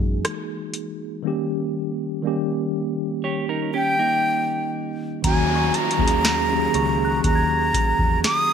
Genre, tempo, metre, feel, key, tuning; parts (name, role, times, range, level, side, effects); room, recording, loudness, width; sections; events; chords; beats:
contemporary R&B; 60 BPM; 4/4; straight; A4 = 440 Hz
mellow tine electric piano; accompaniment; 0.0-8.5 s; D#3 to G#4; -25 LUFS; equal; medium stereo tremolo
vintage muted fingered electric bass; bass; 0.0-8.2 s; C#2 to F#2; -26 LUFS; equal
booming analog drum machine; drums; 0.2-8.5 s; hi-hat, kick drum, rim click, snare drum; -23 LUFS; equal
clean electric guitar; arpeggios; 3.2-5.2 s; A#3 to C#5; -27 LUFS; right 7 dB; digital delay
breathy concert flute; melody; 3.7-8.5 s; G5 to D#6; -22 LUFS; equal; digital delay
downlifter; sound effects; 5.2-8.5 s; -29 LUFS; equal
glassy synth bell; texture; 5.2-8.5 s; A#5 to G#6; -33 LUFS; right 4 dB; chorus, tremolo, digital delay
light reverb, digital ambience; -20 LUFS; side -7 dB against mid
0.0-5.2 A section; 5.2-8.5 B section
0.0 F#13; 1.2 D#7; 5.2 D#m7
0.24 | 1.24 2.24 3.24 4.24 | 5.24 6.24 7.24 8.24